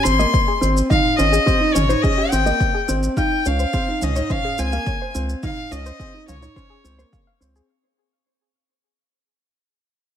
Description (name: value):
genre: piano and strings electronica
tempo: 106 BPM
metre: 4/4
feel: straight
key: unclear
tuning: A4 = 440 Hz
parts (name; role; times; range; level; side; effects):
- warm violin; melody; 0.0-7.4 s; Db5 to C6; -21 LUFS; left 3 dB; none
- felt-muted upright piano; riff; 0.0-7.7 s; Bb3 to Eb4; -23 LUFS; right 2 dB; none
- round analog bass; bass; 0.1-7.6 s; Ab1 to Db2; -21 LUFS; equal; sidechain pumping
- electronic shaker and toms; drums; 0.1-7.7 s; none; -30 LUFS; right 1 dB; small room ambience
- warbly dusty pluck; arpeggios; 0.2-7.6 s; G4 to F5; -29 LUFS; left 4 dB; chorus, sidechain pumping, ping-pong delay
- electronic kick drum; drums; 0.3-7.2 s; none; -22 LUFS; equal; small room ambience
room: light reverb, digital ambience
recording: none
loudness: -16 LUFS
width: side -9 dB against mid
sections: 0.0-7.7 A section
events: drop 0.0-7.7; fade-out 1.7-7.7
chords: 0.0 Ab; 3.2 Dbmaj7